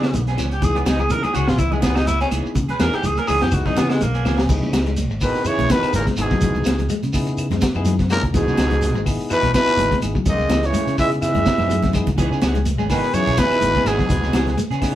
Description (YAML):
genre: afrobeat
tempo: 125 BPM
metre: 4/4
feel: swing 55% on 16ths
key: C# minor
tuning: A4 = 440 Hz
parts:
  - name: growling tenor saxophone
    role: melody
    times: 0.0-4.4 s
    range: G#3 to B4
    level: -23 LUFS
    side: equal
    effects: none
  - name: bell-like tine electric piano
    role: accompaniment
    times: 0.0-14.9 s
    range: B3 to D#5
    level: -30 LUFS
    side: left 3 dB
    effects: none
  - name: clean electric guitar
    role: arpeggios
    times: 0.0-14.8 s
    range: C#3 to G#3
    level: -28 LUFS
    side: left 4 dB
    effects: none
  - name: electric guitar at the edge of break-up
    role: stabs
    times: 0.0-4.4, 12.2-14.9 s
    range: E3 to G#4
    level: -29 LUFS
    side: right 5 dB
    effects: none
  - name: fingered electric bass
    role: bass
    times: 0.0-14.9 s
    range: G#1 to C#3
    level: -23 LUFS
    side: equal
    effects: none
  - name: crunchy breakbeat drum kit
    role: drums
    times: 0.0-14.9 s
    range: crash cymbal, hi-hat, kick drum, snare drum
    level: -22 LUFS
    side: equal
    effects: none
  - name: claves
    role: percussion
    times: 0.0-14.9 s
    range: none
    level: -38 LUFS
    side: left 2 dB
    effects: none
  - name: shekere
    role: percussion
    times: 0.0-14.9 s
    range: none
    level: -31 LUFS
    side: right 1 dB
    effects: none
  - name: congas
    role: percussion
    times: 0.1-14.7 s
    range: none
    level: -28 LUFS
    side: right 1 dB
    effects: none
  - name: growling trumpet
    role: melody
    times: 5.2-14.6 s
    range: G#4 to E5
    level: -21 LUFS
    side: equal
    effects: none
  - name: clear baritone saxophone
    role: second line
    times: 5.2-14.6 s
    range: G#2 to E3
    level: -28 LUFS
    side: left 2 dB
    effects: none
  - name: clear trombone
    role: second line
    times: 5.2-14.6 s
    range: B2 to G#3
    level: -28 LUFS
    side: right 4 dB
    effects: none
room: wet studio ambience, RT60 0.5 s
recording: band playing live in one room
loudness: -16 LUFS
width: side -13 dB against mid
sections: 0.0-4.5 A section; 4.5-14.9 B section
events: tenor saxophone solo 0.0-4.5; drum fill 4.2, 11.5-12.2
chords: 0.0 C#m7